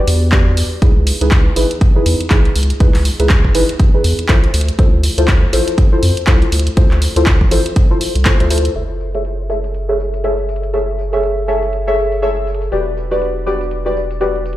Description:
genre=deep house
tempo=121 BPM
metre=4/4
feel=swing 59% on 16ths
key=F# minor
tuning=A4 = 441 Hz
part: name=deep mellow chord stab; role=stabs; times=0.0-14.6 s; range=D#4 to E5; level=-18 LUFS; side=equal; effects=chorus, sidechain pumping, ping-pong delay
part: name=round analog bass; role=bass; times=0.1-14.6 s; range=E1 to F2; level=-17 LUFS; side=equal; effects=sidechain pumping
part: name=house drum kit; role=drums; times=0.1-14.6 s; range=handclaps, hi-hat, tambourine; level=-20 LUFS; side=equal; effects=overdrive, low-pass filter on hats, low-pass filter on snare, low-pass filter on perc, low-pass filter on room
part: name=electronic kick drum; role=drums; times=0.3-8.4 s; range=none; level=-12 LUFS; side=equal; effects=overdrive
room=light reverb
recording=played on a big sound system in a bare room, large studio reverb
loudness=-12 LUFS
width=side -15 dB against mid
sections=0.0-8.8 A section; 8.8-14.6 B section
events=filter sweep on synth stab 8.8-14.6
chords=0.0 Em9; 0.8 C#m9; 4.5 Dm9; 8.8 F#m9; 12.7 Em9

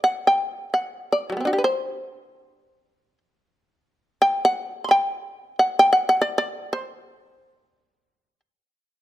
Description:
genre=japanese traditional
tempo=free time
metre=none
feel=none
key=unclear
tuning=A4 = 443 Hz
part: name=shamisen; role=solo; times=0.0-8.4 s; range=F#3 to C6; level=-19 LUFS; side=equal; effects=none
room=light reverb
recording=close, detailed microphones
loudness=-20 LUFS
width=side -14 dB against mid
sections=0.0-9.0 A section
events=none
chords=none

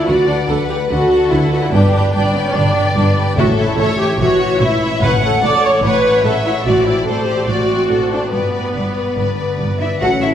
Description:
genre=cinematic, heroic adventure film score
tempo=145 BPM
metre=4/4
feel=straight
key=unclear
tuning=A4 = 439 Hz
part: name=warm symphonic violin section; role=melody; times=0.0-10.3 s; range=G4 to F#5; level=-22 LUFS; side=left 3 dB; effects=none
part: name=warm symphonic violin section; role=second line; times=0.0-10.3 s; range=B4 to G5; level=-24 LUFS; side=left 2 dB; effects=none
part: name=warm symphonic viola section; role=accompaniment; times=0.0-10.3 s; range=A3 to D5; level=-16 LUFS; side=right 1 dB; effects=none
part: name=concert harp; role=arpeggios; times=0.0-10.3 s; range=G2 to D5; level=-24 LUFS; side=left 5 dB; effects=none
part: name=warm symphonic cello section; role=bass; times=0.1-10.3 s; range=G2 to F#4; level=-22 LUFS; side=right 2 dB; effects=none
part: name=warm symphonic double bass section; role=bass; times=0.1-10.3 s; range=G1 to D2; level=-21 LUFS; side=right 1 dB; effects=none
part: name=timpani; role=percussion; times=3.4-5.6 s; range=A2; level=-23 LUFS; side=left 1 dB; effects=none
part: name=silver concert flute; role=second line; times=9.8-10.3 s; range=E5 to F#5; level=-23 LUFS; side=left 2 dB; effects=none
part: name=dark French horn section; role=sustained chords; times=10.0-10.3 s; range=A3 to C#4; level=-20 LUFS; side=left 2 dB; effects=none
room=wet recital hall reverb, RT60 1.6 s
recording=recorded in a church or concert hall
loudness=-13 LUFS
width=side -10 dB against mid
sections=0.0-10.0 A section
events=none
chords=0.1 Bm/D; 1.7 G; 3.4 A; 5.0 F#m/A; 6.7 D7/A; 8.3 G

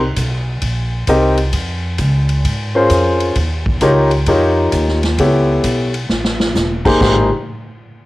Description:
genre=jazz, big band swing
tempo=132 BPM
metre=4/4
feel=swing 66% on 8ths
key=Ab major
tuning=A4 = 440 Hz
part: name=upright bass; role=bass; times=0.0-7.3 s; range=E1 to Ab2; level=-17 LUFS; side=equal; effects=none
part: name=swinging big-band drum kit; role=drums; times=0.2-7.2 s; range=crash cymbal, hi-hat, kick drum, ride cymbal, snare drum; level=-20 LUFS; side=equal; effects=cassette tape
part: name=warm concert grand piano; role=accompaniment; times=1.1-7.3 s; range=Bb3 to Eb5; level=-14 LUFS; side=left 1 dB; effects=cassette tape
room=light reverb, studio reverb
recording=home recording on cassette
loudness=-13 LUFS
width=side -18 dB against mid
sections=0.0-7.0 A section; 7.0-8.1 B section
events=drum fill 6.1-6.6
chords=0.0 Cm7; 1.5 Bbm7; 3.4 Eb7; 5.2 A7; 7.0 Abmaj9

